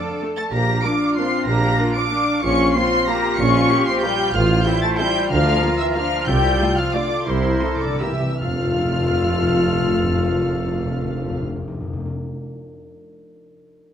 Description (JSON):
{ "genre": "classical", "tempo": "145-205 BPM", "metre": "3/4", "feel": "rubato", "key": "F major", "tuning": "A4 = 441 Hz", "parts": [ { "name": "muted studio violin section", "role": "melody", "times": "0.0-11.4 s", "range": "C6 to D7", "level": "-26 LUFS", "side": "equal", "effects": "none" }, { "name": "mellow large flute ensemble", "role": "second line", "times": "0.0-11.4 s", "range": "C5 to D6", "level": "-28 LUFS", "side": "left 2 dB", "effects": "none" }, { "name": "muted studio violin section", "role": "second line", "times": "0.0-11.4 s", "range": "C5 to D6", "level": "-28 LUFS", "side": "left 2 dB", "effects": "none" }, { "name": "warm clarinet", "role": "second line", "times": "0.0-11.4 s", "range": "D4 to F4", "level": "-28 LUFS", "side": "left 2 dB", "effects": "none" }, { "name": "warm oboe", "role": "second line", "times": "0.0-11.4 s", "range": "A4 to F5", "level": "-32 LUFS", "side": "right 1 dB", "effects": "none" }, { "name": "mellow French horn section", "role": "sustained chords", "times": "0.0-11.4 s", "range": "C3 to F4", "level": "-24 LUFS", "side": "left 3 dB", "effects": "none" }, { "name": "muted studio cello section", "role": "bass", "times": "0.0-11.4 s", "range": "F2 to A4", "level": "-27 LUFS", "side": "right 1 dB", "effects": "none" }, { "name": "muted studio viola section", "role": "accompaniment", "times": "0.2-11.4 s", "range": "A3 to F4", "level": "-30 LUFS", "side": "equal", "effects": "none" }, { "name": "muted studio double bass section", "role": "bass", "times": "0.5-11.4 s", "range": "F1 to D2", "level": "-24 LUFS", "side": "right 2 dB", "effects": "none" }, { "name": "warm tuba", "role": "bass", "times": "0.5-11.4 s", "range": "F1 to D2", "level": "-27 LUFS", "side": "right 3 dB", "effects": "none" }, { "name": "timpani", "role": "percussion", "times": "6.3-12.1 s", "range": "F2 to C3", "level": "-27 LUFS", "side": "left 1 dB", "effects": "none" } ], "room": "moderate recital hall reverb, RT60 1.7 s", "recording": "none", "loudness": "-17 LUFS", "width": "side -8 dB against mid", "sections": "0.0-8.4 A section; 8.4-10.7 B section", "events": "slowing down 5.8-8.4; timpani fill 7.3-8.4", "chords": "0.0 Dm; 0.5 Bb; 2.4 Bbm; 4.3 F/A; 5.3 Bb/D; 6.3 F/C; 7.3 C7; 8.4 F" }